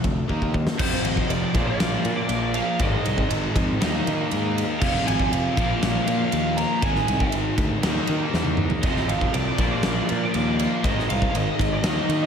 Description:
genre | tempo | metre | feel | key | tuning
hard rock | 119 BPM | 4/4 | straight | unclear | A4 = 438 Hz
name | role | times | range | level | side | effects
lead guitar through a small cranked amp | melody | 0.0-12.3 s | C5 to Bb5 | -28 LUFS | right 2 dB | overdrive
overdriven electric guitar | riff | 0.0-12.3 s | F2 to Eb4 | -29 LUFS | left 9 dB | phaser, slapback echo
overdriven semi-hollow guitar | riff | 0.0-12.3 s | F2 to Eb4 | -30 LUFS | right 8 dB | slapback echo
fuzz picked electric bass | bass | 0.0-12.2 s | F1 to Eb3 | -27 LUFS | equal | overdrive
big rock drum kit | drums | 0.0-12.2 s | crash cymbal, kick drum, ride cymbal, snare drum, toms | -25 LUFS | equal | none
tonewheel organ | sustained chords | 0.8-12.3 s | Ab3 to G5 | -39 LUFS | equal | none
distorted electric guitar | riff | 0.8-12.3 s | F2 to Eb4 | -29 LUFS | left 1 dB | distortion, slapback echo
room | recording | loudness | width
moderate recital hall reverb, RT60 1.4 s | big arena sound | -20 LUFS | side -7 dB against mid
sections
0.8-12.3 A section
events
drum fill 0.3-0.8, 8.3-8.8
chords
0.3 Eb5; 0.8 Fm; 1.5 Bb; 2.8 Ab; 3.8 Eb5; 4.8 Fm; 5.6 Bb5; 6.8 Ab; 7.8 Eb5; 8.8 Fm; 9.6 Bb; 10.8 Ab

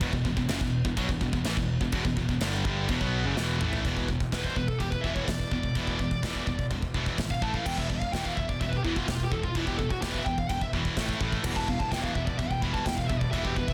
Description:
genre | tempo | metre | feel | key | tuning
heavy metal | 126 BPM | 4/4 | straight | E minor | A4 = 440 Hz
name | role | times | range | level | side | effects
distorted electric guitar | riff | 0.0-3.8, 11.4-13.7 s | E2 to E4 | -39 LUFS | equal | none
high-gain distorted guitar | riff | 0.0-13.7 s | E2 to B3 | -36 LUFS | equal | distortion
high-gain distorted guitar | riff | 0.0-13.7 s | E2 to B3 | -36 LUFS | equal | distortion
picked electric bass | bass | 0.0-13.6 s | E1 to B1 | -36 LUFS | equal | none
big rock drum kit | drums | 0.0-13.7 s | china cymbal, crash cymbal, kick drum, snare drum, toms | -34 LUFS | equal | none
bluesy overdriven lead guitar | melody | 4.3-13.7 s | E4 to B5 | -36 LUFS | equal | distortion, digital delay
room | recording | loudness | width
light reverb | dense, heavily limited modern master | -29 LUFS | mono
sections
0.0-3.8 A section; 3.8-13.7 B section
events
drum fill 3.4-3.8; lead electric guitar solo 3.8-13.7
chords
0.0 Em; 3.8 E5; 7.4 A5; 7.7 E5; 11.0 A5; 11.4 Em

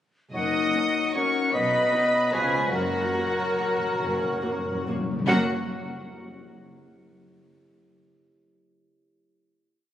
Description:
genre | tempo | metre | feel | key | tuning
classical, orchestral ballroom waltz | 136-165 BPM | 3/4 | rubato | F# major | A4 = 440 Hz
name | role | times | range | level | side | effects
dark chamber violin section | melody | 0.3-5.5 s | F#5 to D#6 | -32 LUFS | left 2 dB | none
mellow clarinet | second line | 0.3-5.5 s | A#4 to B4 | -34 LUFS | equal | none
mellow silver concert flute | second line | 0.3-5.5 s | A#4 to F#5 | -26 LUFS | left 1 dB | none
warm chamber violin section | second line | 0.3-5.5 s | F#4 to D#5 | -34 LUFS | left 1 dB | none
warm cor anglais | second line | 0.3-5.4 s | C#5 to D#5 | -36 LUFS | right 1 dB | none
mellow bassoon | accompaniment | 0.3-5.4 s | E#3 to F#3 | -34 LUFS | equal | none
warm French horn section | sustained chords | 0.3-5.4 s | F#3 to D#4 | -32 LUFS | left 5 dB | none
clear chamber double bass section | bass | 0.3-5.5 s | F#1 to C#2 | -34 LUFS | right 2 dB | none
warm symphonic cello section | bass | 0.3-5.5 s | F#2 to C#3 | -34 LUFS | right 1 dB | none
dark chamber viola section | accompaniment | 0.7-5.5 s | A#3 to F#4 | -36 LUFS | right 1 dB | none
timpani | percussion | 2.7-5.5 s | F#2 | -34 LUFS | left 2 dB | none
room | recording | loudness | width
wet concert hall reverb, RT60 2.2 s | recorded on a phone in the room, studio ambience | -22 LUFS | side -11 dB against mid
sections
0.3-5.3 A section; 5.3-6.5 final chord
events
timpani fill 2.7-5.3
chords
0.3 F#; 1.5 B; 2.3 C#7; 2.7 F#

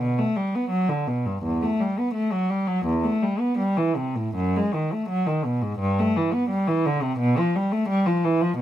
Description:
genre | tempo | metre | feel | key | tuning
classical, baroque-style suite movement for unaccompanied cello | 77-87 BPM | 4/4 | rubato | unclear | A4 = 439 Hz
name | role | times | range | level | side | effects
warm cello | solo | 0.0-8.6 s | E2 to B3 | -21 LUFS | equal | none
room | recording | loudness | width
light reverb | minimal, uncompressed stereo recording | -21 LUFS | side -11 dB against mid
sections
0.0-8.6 A section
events
none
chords
none

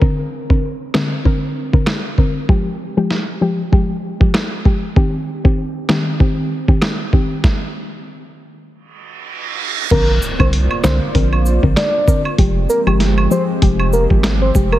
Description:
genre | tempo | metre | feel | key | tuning
dancehall | 97 BPM | 4/4 | swing 56% on 16ths | unclear | A4 = 442 Hz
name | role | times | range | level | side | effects
soft round pluck | accompaniment | 0.0-14.8 s | D3 to Bb4 | -19 LUFS | left 3 dB | chorus
lo-fi sampler-style drum kit | drums | 0.0-14.7 s | crash cymbal, hi-hat, kick drum, rim click, snare drum | -16 LUFS | right 1 dB | none
reverse cymbal and impact | sound effects | 9.0-12.4 s | none | -25 LUFS | right 4 dB | none
soft octave-layered synth lead | melody | 9.9-14.8 s | Bb4 to D5 | -20 LUFS | equal | chorus, ping-pong delay
warm analog pad | sustained chords | 9.9-14.8 s | F3 to D5 | -23 LUFS | equal | chorus, sidechain pumping
round analog bass | bass | 9.9-14.8 s | F1 to C2 | -16 LUFS | right 1 dB | none
cabasa and woodblock | percussion | 10.2-14.8 s | none | -25 LUFS | right 4 dB | none
room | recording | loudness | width
light reverb | heavily compressed radio sound, multiband compression | -14 LUFS | side -14 dB against mid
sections
0.0-9.9 A section; 9.9-14.8 B section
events
stop 7.4-9.9; reverse cymbal 9.0-9.9; impact 9.9-12.4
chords
0.0 Bbadd9; 2.5 Fmadd9; 5.0 Cm; 7.4 N.C.; 9.9 Bbadd9; 12.4 Fmadd9

